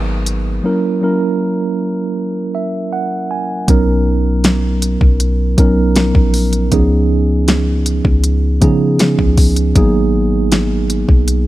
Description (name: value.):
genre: contemporary R&B.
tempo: 79 BPM.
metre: 4/4.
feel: straight.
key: B major.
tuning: A4 = 441 Hz.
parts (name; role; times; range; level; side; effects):
mellow tine electric piano; accompaniment; 0.0-11.5 s; E#3 to G#5; -16 LUFS; right 2 dB; slow stereo tremolo.
warm 808-style bass; bass; 0.0-11.5 s; G#1 to C#3; -15 LUFS; equal; none.
smooth R&B drum kit; drums; 0.3-11.5 s; hi-hat, kick drum, snare drum; -14 LUFS; equal; none.
room: little or no reverb.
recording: none.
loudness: -12 LUFS.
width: side -16 dB against mid.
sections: 0.0-3.7 A section; 3.7-11.5 B section.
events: tine electric piano fill 2.2-3.7.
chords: 0.0 G#m9; 0.6 F#7; 3.7 Bmaj9; 6.7 C#9; 9.8 G#m9.